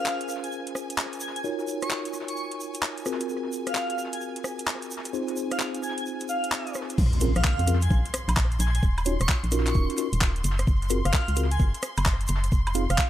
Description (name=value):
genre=UK garage, two-step garage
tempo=130 BPM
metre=4/4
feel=swing 64% on 16ths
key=Bb minor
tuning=A4 = 440 Hz
part: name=airy dreamy lead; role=melody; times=0.0-13.0 s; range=F5 to Db6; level=-33 LUFS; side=equal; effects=chorus, phaser, analog delay
part: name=warm symphonic violin section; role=sustained chords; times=0.0-13.1 s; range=Ab5 to C6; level=-40 LUFS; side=left 1 dB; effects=sidechain pumping, low-pass filter
part: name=mellow tine electric piano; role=stabs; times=0.0-12.8 s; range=C4 to F5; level=-31 LUFS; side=equal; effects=medium stereo tremolo, analog delay
part: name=garage drum kit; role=drums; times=0.1-13.1 s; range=crash cymbal, handclaps, hi-hat, rim click, woodblock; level=-30 LUFS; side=equal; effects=analog delay
part: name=egg shaker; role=percussion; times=0.1-13.1 s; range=none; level=-41 LUFS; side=right 3 dB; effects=none
part: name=organ-like FM bass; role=bass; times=7.0-13.0 s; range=Eb1 to F2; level=-25 LUFS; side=equal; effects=sidechain pumping
part: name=electronic kick drum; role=drums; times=7.0-13.1 s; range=none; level=-23 LUFS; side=equal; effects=none
part: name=impact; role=sound effects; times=7.0-8.8 s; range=none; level=-32 LUFS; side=equal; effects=none
room=light reverb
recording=echo-heavy mix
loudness=-24 LUFS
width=side -12 dB against mid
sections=0.0-7.0 A section; 7.0-13.1 B section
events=drop 7.0-13.1; impact 7.0-8.8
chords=0.0 Bbm9; 1.4 Ebm9; 3.1 Gbmaj9#11; 5.1 Fm7; 7.0 Bb7sus2; 8.8 Ebm9; 10.4 Gbmaj7(no3); 12.5 Fm7